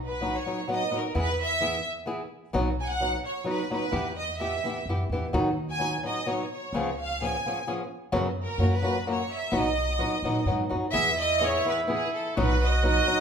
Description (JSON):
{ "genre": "mexican folk, mariachi", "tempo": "128 BPM", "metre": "3/4", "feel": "rubato", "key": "B major", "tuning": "A4 = 439 Hz", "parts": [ { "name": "upright bass", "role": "bass", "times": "0.0-13.0 s", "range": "B1 to A#2", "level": "-30 LUFS", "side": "equal", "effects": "none" }, { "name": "clear studio violin section", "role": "melody", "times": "0.1-13.2 s", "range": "G#4 to G#5", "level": "-28 LUFS", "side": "right 2 dB", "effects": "none" }, { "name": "flamenco guitar", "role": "accompaniment", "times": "0.2-13.2 s", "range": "F#2 to G#4", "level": "-29 LUFS", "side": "left 1 dB", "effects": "none" }, { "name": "warm trumpet", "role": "second line", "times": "11.0-13.2 s", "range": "E4 to F#4", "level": "-29 LUFS", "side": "right 1 dB", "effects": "none" } ], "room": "moderate large studio reverb, RT60 1.2 s", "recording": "band playing live in one room", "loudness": "-25 LUFS", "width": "side -7 dB against mid", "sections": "0.0-11.0 A section; 11.0-13.2 B section", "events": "none", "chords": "0.0 B; 1.1 E; 2.5 B; 3.9 Em; 5.3 B/D#; 6.7 C#7; 8.1 F#sus4; 8.6 F#; 9.5 B; 11.0 E; 12.4 B" }